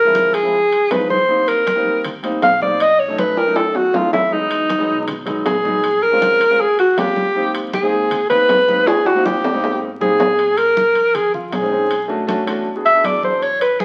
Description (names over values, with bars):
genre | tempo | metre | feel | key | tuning
Afro-Cuban jazz | 158 BPM | 4/4 | straight | unclear | A4 = 440 Hz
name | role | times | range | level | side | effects
warm alto saxophone | melody | 0.0-13.8 s | D#4 to F5 | -17 LUFS | equal | none
warm concert grand piano | accompaniment | 0.0-13.4 s | F3 to G#4 | -26 LUFS | equal | none
upright bass | bass | 0.0-13.8 s | Ab1 to Ab2 | -41 LUFS | equal | none
congas | percussion | 0.1-13.8 s | none | -32 LUFS | equal | none
timbales | percussion | 0.2-13.8 s | none | -27 LUFS | equal | none
room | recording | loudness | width
moderate large studio reverb, RT60 1.1 s | very old 78 rpm record, vinyl crackle | -16 LUFS | mono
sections
0.0-10.4 A section; 10.4-13.8 A section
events
alto saxophone solo 0.0-13.8; drum fill 3.4-4.3, 8.9-10.4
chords
0.0 Dm7b5; 0.5 Db9; 1.3 Cm7; 2.8 B7; 4.3 Emaj7; 5.8 Bbm7; 6.6 Eb7; 7.4 Abmaj7; 10.4 Bbm11; 11.9 Bm7; 12.7 E9